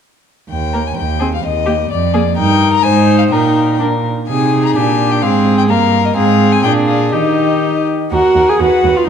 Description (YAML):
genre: quick classical-period movement for string quartet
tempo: 127 BPM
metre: 2/4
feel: rubato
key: Eb major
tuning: A4 = 440 Hz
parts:
  - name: rich violin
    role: melody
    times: 0.5-9.1 s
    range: D5 to Bb5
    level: -18 LUFS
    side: left 11 dB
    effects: none
  - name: rich cello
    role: bass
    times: 0.5-8.9 s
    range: Eb2 to Eb3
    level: -16 LUFS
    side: right 4 dB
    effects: none
  - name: dark violin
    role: second line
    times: 0.7-9.1 s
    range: G4 to C5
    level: -19 LUFS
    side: left 3 dB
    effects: none
  - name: warm viola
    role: accompaniment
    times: 0.7-9.1 s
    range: Bb3 to Ab4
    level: -15 LUFS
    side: right 1 dB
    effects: none
room: moderate concert hall reverb, RT60 1.9 s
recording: dark, warm production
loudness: -11 LUFS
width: side -7 dB against mid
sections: 0.5-8.1 A section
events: none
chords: 0.5 Eb; 1.0 Ab/Eb (rootless); 1.4 Eb5; 1.9 Bb/F; 2.4 Eb/G; 2.8 Ab; 3.3 Eb/Bb; 3.8 N.C.; 4.3 Ab/C; 4.8 Gm/Bb; 5.2 Fm/Ab; 5.7 Gm7; 6.2 Fm/Ab; 6.6 Bb7; 7.1 Eb; 8.1 Ebm; 8.6 B/D#